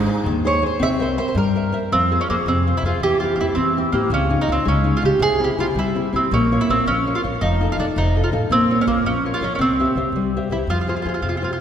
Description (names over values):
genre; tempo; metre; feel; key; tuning
italian folk, Italian serenade; 109 BPM (dotted quarters); 6/8; straight; F harmonic minor; A4 = 440 Hz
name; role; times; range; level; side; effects
nylon-string guitar; accompaniment; 0.0-11.6 s; C3 to E5; -22 LUFS; left 2 dB; none
upright bass; bass; 0.0-11.5 s; F1 to Ab2; -23 LUFS; equal; none
mandolin; melody; 0.5-11.6 s; Bb3 to E5; -20 LUFS; right 2 dB; none
room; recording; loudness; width
wet concert hall reverb, RT60 2.2 s; recorded in a church or concert hall; -17 LUFS; side -9 dB against mid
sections
0.0-1.9 A section; 1.9-11.6 B section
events
none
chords
0.0 Ab; 0.8 C7; 1.9 Fm; 3.0 C/E; 4.1 Dbadd9; 5.2 C; 6.3 Bbm; 7.4 F7; 8.5 Bbm; 9.6 C; 10.7 Fm